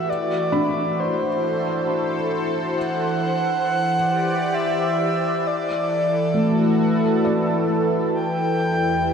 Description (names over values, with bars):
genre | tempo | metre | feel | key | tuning
ambient | 67 BPM | 3/4 | straight | E minor | A4 = 444 Hz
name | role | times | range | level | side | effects
breathy flute-like synth lead | melody | 0.0-9.1 s | C5 to G5 | -24 LUFS | equal | chorus, tremolo, shimmer reverb, tape echo
warm analog pad | sustained chords | 0.0-9.1 s | E3 to D5 | -22 LUFS | equal | chorus, shimmer reverb
felt-muted upright piano | arpeggios | 0.0-9.1 s | A3 to B5 | -26 LUFS | left 2 dB | analog chorus, shimmer reverb, tape echo
round analog bass | bass | 8.1-9.1 s | E2 | -37 LUFS | equal | none
room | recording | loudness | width
wet lush hall reverb, RT60 2.6 s | dreamy mix soaked in reverb | -19 LUFS | side -6 dB against mid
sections
0.0-8.1 A section; 8.1-9.1 B section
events
none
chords
0.1 D7/E; 2.8 Cadd9/E; 5.4 E9sus4; 8.1 G/E